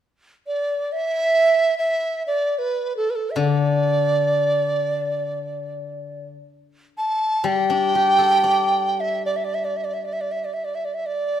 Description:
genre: chinese traditional, Chinese chamber ensemble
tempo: free time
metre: none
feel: none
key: D zhi mode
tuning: A4 = 436 Hz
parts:
  - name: mellow large dizi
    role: melody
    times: 0.5-11.4 s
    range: A4 to A5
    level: -20 LUFS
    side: right 2 dB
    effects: none
  - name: steel-string zither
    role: accompaniment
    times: 3.4-10.4 s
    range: D3 to D5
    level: -24 LUFS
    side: left 6 dB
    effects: none
room: moderate scoring stage reverb, RT60 1.6 s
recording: minimal, uncompressed stereo recording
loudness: -19 LUFS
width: side -10 dB against mid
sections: 0.0-11.4 A section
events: none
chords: none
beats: free time

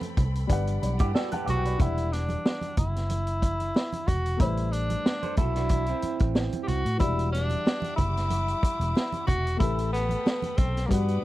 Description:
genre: lush 1970s-style soul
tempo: 92 BPM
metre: 4/4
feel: swing 54% on 16ths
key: A dorian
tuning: A4 = 442 Hz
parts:
  - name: dark baby grand piano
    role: accompaniment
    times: 0.0-11.2 s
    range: E3 to F#6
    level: -35 LUFS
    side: left 4 dB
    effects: none
  - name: warm studio string section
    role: sustained chords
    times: 0.0-1.8, 7.0-11.2 s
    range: G3 to D6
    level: -41 LUFS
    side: left 2 dB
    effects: none
  - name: vintage drum kit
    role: drums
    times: 0.0-11.2 s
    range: hi-hat, kick drum, snare drum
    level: -26 LUFS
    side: equal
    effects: none
  - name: congas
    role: percussion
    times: 0.0-11.2 s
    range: none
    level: -37 LUFS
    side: right 4 dB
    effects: none
  - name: vintage muted fingered electric bass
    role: bass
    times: 0.2-11.2 s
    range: E1 to A2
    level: -28 LUFS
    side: equal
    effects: none
  - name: electric guitar through a small old amp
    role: riff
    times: 1.0-6.8 s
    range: C4 to C5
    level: -33 LUFS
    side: right 9 dB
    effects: none
  - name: warm tenor saxophone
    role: melody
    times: 1.5-11.2 s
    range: Bb3 to G4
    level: -30 LUFS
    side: equal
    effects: none
room: little or no reverb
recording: dry, close 1970s-style studio recording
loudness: -24 LUFS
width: side -16 dB against mid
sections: 0.0-1.8 A section; 1.8-11.2 B section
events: tenor saxophone solo 0.0-1.8; grand piano fill 0.8-1.8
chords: 0.0 Am9; 0.5 Gmaj7; 1.8 Em9; 4.4 Am9; 7.0 Em9; 9.6 Asus2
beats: 0.50 1.15 | 1.80 2.45 3.10 3.75 | 4.40 5.05 5.70 6.35 | 7.00 7.65 8.30 8.95 | 9.61 10.26 10.90

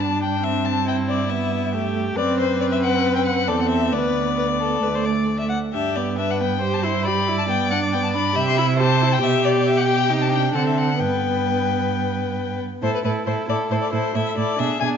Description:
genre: quick classical-period movement for string quartet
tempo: 137 BPM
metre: 4/4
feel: straight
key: G major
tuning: A4 = 440 Hz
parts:
  - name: rich violin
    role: melody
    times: 0.0-14.9 s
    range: B4 to C6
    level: -24 LUFS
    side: left 7 dB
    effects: none
  - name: warm violin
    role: second line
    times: 0.0-15.0 s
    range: D4 to F#5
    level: -25 LUFS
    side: left 4 dB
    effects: none
  - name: rich viola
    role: accompaniment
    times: 0.0-15.0 s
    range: A3 to G4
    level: -24 LUFS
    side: right 2 dB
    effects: none
  - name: rich cello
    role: bass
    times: 0.0-14.9 s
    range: D2 to D3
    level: -24 LUFS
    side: right 6 dB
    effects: none
room: moderate scoring stage reverb, RT60 1.6 s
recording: nothing above 7.5 kHz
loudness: -18 LUFS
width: side -7 dB against mid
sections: 0.0-12.8 A section; 12.8-15.0 B section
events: none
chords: 0.4 Am7/G; 2.2 D13; 3.9 Bm7/D; 4.8 D5; 5.7 G; 6.6 C/G; 7.5 G; 8.4 C; 9.2 G/B; 10.1 Cm; 10.5 D7; 11.0 G; 12.8 A5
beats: 0.01 | 0.45 0.88 1.31 1.75 | 2.18 2.62 3.05 3.49 | 3.94 4.38 4.83 5.28 | 5.73 6.18 6.62 7.06 | 7.50 7.93 8.37 8.80 | 9.23 9.66 10.10 10.55 | 11.00 11.46 11.92 12.38 | 12.82 13.27 13.71 14.15 | 14.59

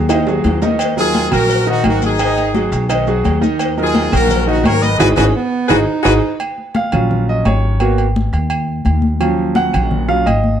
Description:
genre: latin, salsa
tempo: 171 BPM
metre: 4/4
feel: straight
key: unclear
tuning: A4 = 440 Hz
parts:
  - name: clear concert grand piano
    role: accompaniment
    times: 0.0-10.6 s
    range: Eb3 to Gb5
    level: -18 LUFS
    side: right 2 dB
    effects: none
  - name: upright bass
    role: bass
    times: 0.0-10.6 s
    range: Ab1 to Eb2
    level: -17 LUFS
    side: equal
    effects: none
  - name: claves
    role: percussion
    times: 0.1-10.4 s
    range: none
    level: -32 LUFS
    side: right 2 dB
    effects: none
  - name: congas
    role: percussion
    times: 0.1-10.6 s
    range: none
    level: -21 LUFS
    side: left 3 dB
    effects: none
  - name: cowbell and bongos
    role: percussion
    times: 0.1-6.1 s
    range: none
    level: -25 LUFS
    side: left 7 dB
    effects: none
  - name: maracas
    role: percussion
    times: 0.1-6.1 s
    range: none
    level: -34 LUFS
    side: left 8 dB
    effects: none
  - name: timbales and agogo bells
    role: percussion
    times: 0.1-10.4 s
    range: none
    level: -23 LUFS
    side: right 4 dB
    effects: none
  - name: brilliant horn section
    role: melody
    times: 1.0-6.1 s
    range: Eb4 to Eb5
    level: -17 LUFS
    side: left 1 dB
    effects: plate reverb
  - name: breathy baritone saxophone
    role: second line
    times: 5.2-6.4 s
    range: Cb4 to Eb4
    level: -19 LUFS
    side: right 5 dB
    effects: none
room: light reverb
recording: dark, warm production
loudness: -13 LUFS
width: side -9 dB against mid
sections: 0.0-6.4 A section; 6.4-10.6 B section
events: drum fill 0.0-0.8, 5.3-6.4; band accent 5.0-6.4; grand piano solo 6.4-10.6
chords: 0.0 Ab5; 0.8 Ebm; 2.2 Abm7; 3.6 Ebm; 5.0 Abm7; 6.4 Ab13sus4; 7.8 Abm7; 9.2 Ebm7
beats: 0.10 0.45 | 0.80 1.15 1.50 1.85 | 2.20 2.55 2.90 3.25 | 3.60 3.95 4.30 4.65 | 5.00 5.35 5.70 6.05 | 6.40 6.75 7.10 7.45 | 7.80 8.16 8.51 8.86 | 9.21 9.56 9.91 10.27

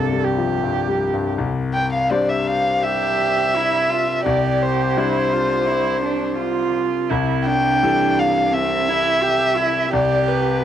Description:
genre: neoclassical piano and strings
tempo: 84 BPM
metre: 4/4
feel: rubato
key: C major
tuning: A4 = 441 Hz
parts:
  - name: warm cello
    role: second line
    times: 0.0-10.6 s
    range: C4 to A4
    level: -22 LUFS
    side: right 10 dB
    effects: cassette tape
  - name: bright concert grand piano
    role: accompaniment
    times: 0.0-10.6 s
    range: C2 to E5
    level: -22 LUFS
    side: left 4 dB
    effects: cassette tape, plate reverb
  - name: dark violin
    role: melody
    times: 1.7-10.6 s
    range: B4 to G5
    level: -19 LUFS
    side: left 1 dB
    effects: cassette tape
room: moderate studio reverb, RT60 0.6 s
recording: home recording on cassette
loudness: -17 LUFS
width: side -10 dB against mid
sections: 0.0-1.4 A section; 1.4-10.6 B section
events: none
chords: 0.0 G5/C; 1.4 Csus2; 7.1 Am7/C; 9.9 G/C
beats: 0.62 | 1.38 2.11 2.83 3.56 | 4.26 4.97 5.69 6.40 | 7.11 7.83 8.54 9.23 | 9.94

